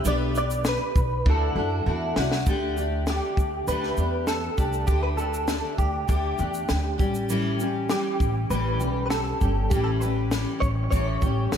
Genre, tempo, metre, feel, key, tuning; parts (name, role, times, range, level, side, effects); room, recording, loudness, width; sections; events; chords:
acoustic pop; 99 BPM; 4/4; straight; A4 = 440 Hz
direct-recorded clean electric guitar; melody; 0.0-11.6 s; G4 to D5; -29 LUFS; right 1 dB; ensemble chorus, slapback echo, tape echo
picked steel-string acoustic guitar; accompaniment; 0.0-11.6 s; A2 to B4; -28 LUFS; left 1 dB; double-tracked left and right, slapback echo
upright bass; bass; 0.0-11.6 s; G1 to F#2; -27 LUFS; equal
compact cocktail drum kit; drums; 0.0-11.6 s; kick drum, shaker, snare drum; -26 LUFS; equal
light reverb, studio reverb; -22 LUFS; side -8 dB against mid
0.0-2.5 A section; 2.5-11.6 B section
drum fill 1.3-2.5
0.0 G/B; 1.3 Dadd9; 2.5 Dsus4; 7.0 A7